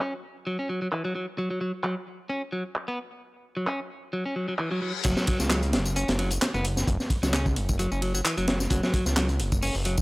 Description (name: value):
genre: breakbeat, breaks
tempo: 131 BPM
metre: 4/4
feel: swing 54% on 16ths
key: unclear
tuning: A4 = 437 Hz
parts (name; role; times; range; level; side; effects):
- clean electric guitar; riff; 0.0-10.0 s; E3 to C#4; -30 LUFS; equal; tape echo
- garage drum kit; drums; 0.0-10.0 s; handclaps, ride cymbal, tambourine; -31 LUFS; equal; low-pass filter on snare, low-pass filter on perc, low-pass filter on cymbals
- reverse cymbal; sound effects; 4.4-5.0 s; none; -37 LUFS; left 7 dB; none
- crunchy breakbeat drum kit; drums; 5.0-10.0 s; crash cymbal, hi-hat, kick drum, snare drum; -26 LUFS; equal; none
- fat analog bass; bass; 5.1-10.0 s; F#1 to C#2; -27 LUFS; equal; none
room: small room reverb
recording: dry, gritty hardware recording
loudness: -25 LUFS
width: side -22 dB against mid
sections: 0.0-5.0 A section; 5.0-10.0 B section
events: reverse cymbal 4.4-5.0; drop 5.0-10.0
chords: 0.0 F#5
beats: 0.01 0.47 0.92 | 1.38 1.84 2.30 2.75 | 3.21 3.67 4.13 4.59 | 5.04 5.50 5.96 6.42 | 6.88 7.33 7.79 8.25 | 8.71 9.17 9.62